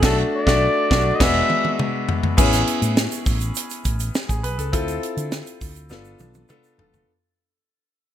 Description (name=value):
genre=polished 1980s jazz-funk pop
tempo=102 BPM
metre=4/4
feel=straight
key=A major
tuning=A4 = 440 Hz
part: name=warm flugelhorn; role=melody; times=0.0-1.8 s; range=A4 to E5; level=-22 LUFS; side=left 2 dB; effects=digital delay
part: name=clear concert grand piano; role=accompaniment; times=0.0-7.1 s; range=G#3 to B4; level=-23 LUFS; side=left 2 dB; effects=wide subtle chorus
part: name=mellow fretless electric bass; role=bass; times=0.0-7.0 s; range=E1 to D3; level=-24 LUFS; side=equal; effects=none
part: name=tight funk drum kit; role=drums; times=0.0-7.1 s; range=crash cymbal, hi-hat, kick drum, snare drum, toms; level=-21 LUFS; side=right 1 dB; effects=none
part: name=tube shaker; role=percussion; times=2.4-7.1 s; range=none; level=-36 LUFS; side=right 8 dB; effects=none
room=light reverb, studio reverb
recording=bright 1980s-style digital production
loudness=-18 LUFS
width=side -10 dB against mid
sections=0.0-2.4 A section; 2.4-7.1 B section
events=band accent 0.0-2.4; drum fill 1.2-2.4, 5.9-7.1; fade-out 2.4-7.1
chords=0.0 Bm7; 1.2 E9; 2.4 Amaj9; 4.7 Dm7; 5.9 G7